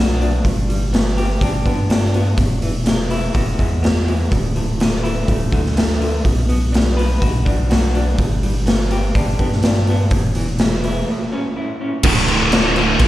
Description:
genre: quiet-loud alternative rock.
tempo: 124 BPM.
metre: 4/4.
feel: straight.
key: unclear.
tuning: A4 = 440 Hz.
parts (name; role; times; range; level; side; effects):
electric guitar through a small old amp; arpeggios; 0.0-12.1 s; D2 to B4; -23 LUFS; left 1 dB; tremolo, slapback echo.
rubbery square bass; bass; 0.0-13.1 s; D1 to G2; -20 LUFS; equal; none.
raw garage drum kit; drums; 0.2-13.1 s; crash cymbal, hi-hat, kick drum, snare drum; -18 LUFS; equal; none.
crunchy overdriven guitar; riff; 12.0-13.1 s; D2 to Bb3; -17 LUFS; right 10 dB; slapback echo.
scooped high-gain guitar; riff; 12.0-13.1 s; D2 to Bb3; -18 LUFS; left 11 dB; distortion, slapback echo.
room: light reverb.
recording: live gig heard through the venue's PA, recital hall reverb.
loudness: -15 LUFS.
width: side -15 dB against mid.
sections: 0.0-12.1 A section; 12.1-13.1 B section.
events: break 11.1-12.1.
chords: 0.5 G; 2.4 E; 4.3 Dsus2; 6.2 Bm; 8.2 G; 10.1 E; 11.1 A; 12.1 D5.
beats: | 0.45 0.93 1.42 1.90 | 2.38 2.87 3.35 3.83 | 4.32 4.80 5.28 5.77 | 6.25 6.73 7.22 7.70 | 8.19 8.67 9.15 9.64 | 10.12 10.61 11.09 11.57 | 12.05 12.53 13.01.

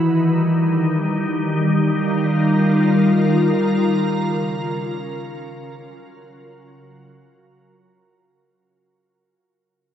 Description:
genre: ambient.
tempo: free time.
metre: none.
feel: none.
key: unclear.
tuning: A4 = 440 Hz.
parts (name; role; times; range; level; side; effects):
soft additive organ-like pad; solo; 0.0-8.6 s; Db3 to Bb4; -17 LUFS; equal; ensemble chorus, built-in reverb, diffuse ambient delay.
room: wet concert hall reverb, RT60 2.2 s.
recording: none.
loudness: -16 LUFS.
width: side -10 dB against mid.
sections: 0.0-8.5 A section.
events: fade-out 0.0-8.5.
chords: 0.0 Ebadd9; 4.2 Gbmaj7.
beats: free time.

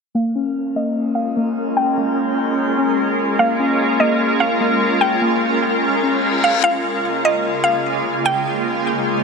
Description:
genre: hip hop.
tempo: 148 BPM.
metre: 4/4.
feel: half-time.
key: Bb dorian.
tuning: A4 = 436 Hz.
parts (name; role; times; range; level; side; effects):
shimmering ambient pad; sustained chords; 1.0-9.2 s; Db3 to Bb4; -18 LUFS; right 1 dB; chorus, built-in reverb, low-pass filter.
warbly lo-fi synth keys; arpeggios; 0.1-6.6 s; Bb3 to Db4; -21 LUFS; left 3 dB; chorus, low-pass filter, ping-pong delay.
mallet-like synth pluck; melody; 0.2-8.6 s; Eb5 to G5; -21 LUFS; equal; chorus, low-pass filter, ping-pong delay.
reverse cymbal; sound effects; 6.1-6.6 s; none; -27 LUFS; left 8 dB; none.
room: wet shimmer reverb, RT60 5.0 s.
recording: none.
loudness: -16 LUFS.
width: side -4 dB against mid.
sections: 0.1-6.6 A section; 6.6-9.2 B section.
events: filter sweep 0.1-6.6; reverse cymbal 6.1-6.6.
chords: 0.1 Bbm7.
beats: | 0.15 0.55 0.96 1.36 | 1.77 2.17 2.58 2.98 | 3.39 3.80 4.20 4.61 | 5.01 5.42 5.82 6.23 | 6.63 7.04 7.45 7.85 | 8.26 8.66 9.07.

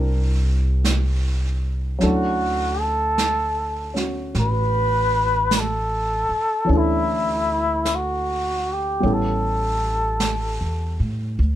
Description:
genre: jazz ballad.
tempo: 51 BPM.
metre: 4/4.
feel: swing 66% on 8ths.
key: D major.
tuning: A4 = 439 Hz.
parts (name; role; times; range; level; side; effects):
warm baby grand piano; accompaniment; 0.0-11.4 s; E3 to Bb4; -26 LUFS; equal; none.
upright bass; bass; 0.0-11.6 s; A1 to A2; -23 LUFS; equal; none.
jazz brush drum kit; drums; 0.8-11.6 s; brushed snare drum, hi-hat, snare drum; -29 LUFS; right 4 dB; none.
trumpet with cup mute; melody; 2.1-11.0 s; E4 to B4; -22 LUFS; equal; none.
room: little or no reverb.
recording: none.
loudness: -19 LUFS.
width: side -12 dB against mid.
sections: 0.0-11.4 A section.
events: none.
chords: 0.0 C9; 2.0 Dmaj9; 9.0 A9.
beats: 0.84 | 2.01 3.18 4.35 5.51 | 6.68 7.85 9.03 10.20 | 11.38.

